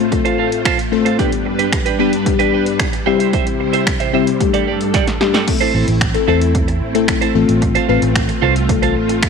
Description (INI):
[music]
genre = dance-pop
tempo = 112 BPM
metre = 4/4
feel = straight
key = unclear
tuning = A4 = 441 Hz
[part]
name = string machine, violas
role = sustained chords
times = 0.0-9.3 s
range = G2 to C5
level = -22 LUFS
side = right 2 dB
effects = ensemble chorus, sidechain pumping
[part]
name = twelve-string electric guitar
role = riff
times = 0.0-9.3 s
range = D4 to E5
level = -20 LUFS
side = right 14 dB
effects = wide subtle chorus
[part]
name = glassy digital keys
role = accompaniment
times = 0.1-9.2 s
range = G3 to B4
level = -18 LUFS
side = left 11 dB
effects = chorus, sidechain pumping
[part]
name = punchy analog drum machine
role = drums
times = 0.1-9.3 s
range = crash cymbal, finger snaps, hi-hat, kick drum, snare drum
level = -19 LUFS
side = right 2 dB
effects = none
[part]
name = vintage muted fingered electric bass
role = bass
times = 5.7-9.3 s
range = A1 to E2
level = -18 LUFS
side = right 2 dB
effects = sidechain pumping
[sound]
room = moderate echo chamber reverb, RT60 1.8 s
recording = 1960s-style stereo with parts hard left and right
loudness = -13 LUFS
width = side -5 dB against mid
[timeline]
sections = 0.0-5.5 A section; 5.5-9.3 B section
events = drum fill 4.9-5.5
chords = 0.0 F/A; 1.2 G; 3.1 C; 4.4 Gsus2; 5.5 Am; 7.4 F/A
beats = 0.12 0.66 | 1.19 1.73 2.26 2.80 | 3.33 3.87 4.41 4.94 | 5.48 6.01 6.55 7.08 | 7.62 8.16 8.69 9.23